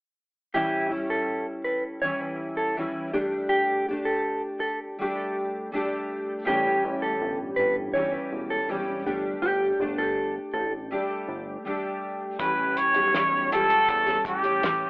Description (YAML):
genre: indie pop, bedroom pop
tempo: 81 BPM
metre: 4/4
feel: straight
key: unclear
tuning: A4 = 441 Hz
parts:
  - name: mellow electric guitar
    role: second line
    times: 0.5-10.7 s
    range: G4 to C#5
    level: -26 LUFS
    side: equal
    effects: wide subtle chorus, tape echo, plate reverb
  - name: fingerpicked steel-string acoustic guitar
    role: accompaniment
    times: 0.5-14.9 s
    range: A2 to G4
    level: -29 LUFS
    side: equal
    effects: analog chorus, warbly pitch drift, plate reverb
  - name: chorused synth bass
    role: bass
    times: 6.5-14.8 s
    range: E1 to E2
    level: -35 LUFS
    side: equal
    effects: none
  - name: warm trumpet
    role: melody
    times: 12.4-14.9 s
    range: G4 to C#5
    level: -21 LUFS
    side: equal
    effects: lush chorus, tape echo, plate reverb
  - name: cloth-damped thuddy drum kit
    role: drums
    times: 12.4-14.8 s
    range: hi-hat, kick drum, snare drum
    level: -32 LUFS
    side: equal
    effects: none
room: wet studio reverb, RT60 0.5 s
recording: telephone sound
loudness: -24 LUFS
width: side -31 dB against mid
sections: 0.5-12.4 A section; 12.4-14.9 B section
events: none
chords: 0.5 A7; 3.1 Gsus2; 6.5 A7; 9.1 Gsus2; 12.4 A7